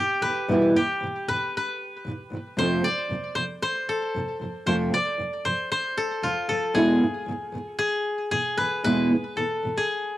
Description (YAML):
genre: pop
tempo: 115 BPM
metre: 4/4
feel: swing 55% on 16ths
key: unclear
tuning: A4 = 442 Hz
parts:
  - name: koto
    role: melody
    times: 0.0-10.2 s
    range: F4 to D5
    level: -26 LUFS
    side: left 1 dB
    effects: cassette tape
  - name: nylon-string guitar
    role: accompaniment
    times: 0.0-9.9 s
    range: E2 to F4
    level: -24 LUFS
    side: right 1 dB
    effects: double-tracked left and right, cassette tape, plate reverb
room: wet booth ambience, RT60 0.2 s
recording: home recording on cassette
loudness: -23 LUFS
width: side -14 dB against mid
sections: 0.0-10.2 A section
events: none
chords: 0.0 Em; 2.6 F; 6.8 E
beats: | 0.47 1.00 1.52 2.05 | 2.57 3.09 3.62 4.14 | 4.66 5.19 5.71 6.24 | 6.76 7.28 7.81 8.33 | 8.85 9.38 9.90